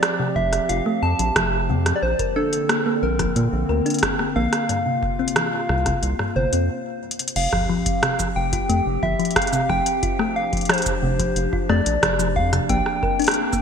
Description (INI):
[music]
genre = IDM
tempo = 90 BPM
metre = 4/4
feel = straight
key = F major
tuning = A4 = 440 Hz
[part]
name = soft struck synth lead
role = melody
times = 0.0-13.6 s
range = A4 to A5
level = -24 LUFS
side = equal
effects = chorus, cassette tape, digital delay
[part]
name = warbly tape-like pad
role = sustained chords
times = 0.0-13.6 s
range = C3 to G4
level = -28 LUFS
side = left 1 dB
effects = chorus, built-in reverb
[part]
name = booming analog drum machine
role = drums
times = 0.0-13.6 s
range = crash cymbal, hi-hat, rim click, shaker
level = -24 LUFS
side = right 1 dB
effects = gated reverb
[part]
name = thumb-piano-like synth pluck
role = arpeggios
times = 0.2-13.6 s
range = G2 to Bb4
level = -26 LUFS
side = left 2 dB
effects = chorus, ping-pong delay
[part]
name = round analog bass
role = bass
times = 0.4-12.8 s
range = F1 to Bb2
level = -23 LUFS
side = equal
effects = none
[part]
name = electronic kick drum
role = drums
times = 0.4-13.6 s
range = none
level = -28 LUFS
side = equal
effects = none
[sound]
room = moderate lush hall reverb, RT60 2.6 s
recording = bright 1980s-style digital production, faint mains hum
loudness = -19 LUFS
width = side -7 dB against mid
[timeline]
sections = 0.0-7.4 A section; 7.4-13.6 B section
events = stop 6.7-7.4; drum fill 7.0-7.4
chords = 0.0 Fsus2; 2.0 Bbadd9; 4.7 C7sus4; 7.4 Fsus2; 12.7 Bbadd9